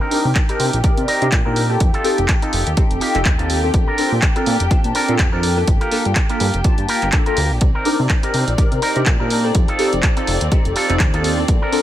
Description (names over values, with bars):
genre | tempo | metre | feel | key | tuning
filtered disco house | 124 BPM | 4/4 | swing 56% on 16ths | C dorian | A4 = 440 Hz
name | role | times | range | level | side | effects
funky polysynth comp | accompaniment | 0.0-11.8 s | Bb3 to A5 | -22 LUFS | equal | chorus, phaser, sidechain pumping, low-pass filter
clear studio violin section | sustained chords | 0.0-11.8 s | C4 to G5 | -26 LUFS | left 2 dB | sidechain pumping, low-pass filter
electric guitar with an envelope filter | riff | 0.0-11.8 s | C4 to Bb4 | -23 LUFS | right 1 dB | sidechain pumping, low-pass filter
tambourine | percussion | 0.0-11.8 s | none | barely audible | none | none
punchy analog drum machine | drums | 0.1-11.8 s | handclaps, hi-hat | -23 LUFS | right 1 dB | sidechain pumping on hats
fat analog bass | bass | 0.2-11.6 s | F1 to C3 | -20 LUFS | equal | sidechain pumping, low-pass filter
electronic kick drum | drums | 0.4-11.6 s | none | -17 LUFS | equal | none
room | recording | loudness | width
digital ambience | none | -14 LUFS | side -12 dB against mid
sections
0.0-11.8 A section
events
filter sweep 0.0-11.8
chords
0.0 Cm7; 1.8 F7; 3.7 Bbmaj7; 5.7 Gm7; 7.6 Cm7; 9.5 F7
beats
0.35 0.84 1.32 | 1.81 2.29 2.77 3.26 | 3.74 4.23 4.71 5.19 | 5.68 6.16 6.65 7.13 | 7.61 8.10 8.58 9.06 | 9.55 10.03 10.52 11.00 | 11.48